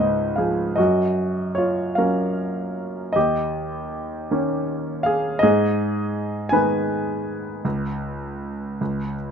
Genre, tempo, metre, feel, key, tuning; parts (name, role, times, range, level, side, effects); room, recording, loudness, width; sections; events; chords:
classical, lyrical solo piano; 50-55 BPM (dotted quarters); 6/8; rubato; F# major; A4 = 441 Hz
clear concert grand piano; solo; 0.0-9.3 s; C#2 to G#5; -20 LUFS; equal
light reverb; minimal, uncompressed stereo recording; -20 LUFS; side -7 dB against mid
0.8-9.3 A section
grand piano fill 0.0-0.8
0.0 C#; 0.8 F#; 3.2 D#7; 5.4 G#m; 7.7 G#madd11/C#